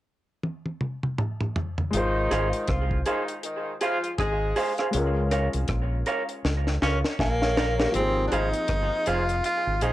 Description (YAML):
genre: lovers rock reggae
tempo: 80 BPM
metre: 4/4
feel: swing 59% on 16ths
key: Ab major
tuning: A4 = 441 Hz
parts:
  - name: deep reggae drum kit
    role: drums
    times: 0.4-9.9 s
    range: hi-hat, kick drum, rim click, snare drum, toms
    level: -29 LUFS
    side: equal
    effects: cassette tape
  - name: mellow saxophone section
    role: second line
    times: 1.9-4.7 s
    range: Eb3 to Ab4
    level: -30 LUFS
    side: left 1 dB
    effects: cassette tape, plate reverb
  - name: warm grand piano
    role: accompaniment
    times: 1.9-9.9 s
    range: F3 to Ab5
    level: -31 LUFS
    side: left 2 dB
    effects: cassette tape, plate reverb
  - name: deep dub fingered electric bass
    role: bass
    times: 1.9-9.9 s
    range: F1 to Db2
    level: -27 LUFS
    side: equal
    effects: transformer saturation
  - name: electric guitar through a small old amp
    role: stabs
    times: 2.3-9.9 s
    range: Ab4 to F5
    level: -30 LUFS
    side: right 2 dB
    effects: cassette tape, tape echo, plate reverb
  - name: bright tenor saxophone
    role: melody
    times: 6.8-9.9 s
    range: Bb3 to F4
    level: -26 LUFS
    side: equal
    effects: tape echo, plate reverb
room: moderate booth ambience, RT60 0.2 s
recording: home recording on cassette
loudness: -23 LUFS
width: side -15 dB against mid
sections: 0.0-1.9 A section; 1.9-7.9 B section; 7.9-9.9 C section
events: drum fill 0.4-1.9, 6.4-7.9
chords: 0.0 N.C.; 1.9 Ab6; 4.9 Db6; 7.9 Ab6